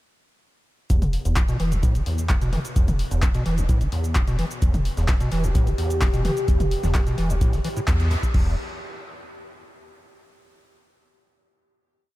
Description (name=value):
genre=acid house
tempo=129 BPM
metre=4/4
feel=straight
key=E minor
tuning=A4 = 440 Hz
part: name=overdriven acid bass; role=riff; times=0.9-8.6 s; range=E1 to E3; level=-26 LUFS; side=equal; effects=tube saturation, analog chorus, sidechain pumping, ping-pong delay
part: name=warm sub bass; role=bass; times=0.9-8.6 s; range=E1 to E2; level=-25 LUFS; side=equal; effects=sidechain pumping
part: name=electronic kick drum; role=drums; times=0.9-8.4 s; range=none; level=-22 LUFS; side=equal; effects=none
part: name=punchy analog drum machine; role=drums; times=0.9-8.4 s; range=cabasa, crash cymbal, handclaps, hi-hat, toms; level=-30 LUFS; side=left 1 dB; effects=overdrive
part: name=warbly tape-like pad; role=sustained chords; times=5.4-8.4 s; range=G4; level=-31 LUFS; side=left 1 dB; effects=chorus, built-in reverb, vintage 12-bit sampler grit, sidechain pumping
part: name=tight funk drum kit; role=drums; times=4.6-8.2 s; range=hi-hat, snare drum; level=-46 LUFS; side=left 2 dB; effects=none
room=little or no reverb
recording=none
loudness=-20 LUFS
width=side -17 dB against mid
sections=0.9-8.3 groove; 8.3-10.2 final note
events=filter sweep on acid bass 0.9-8.3; band accent 7.9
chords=0.9 Em; 8.3 N.C.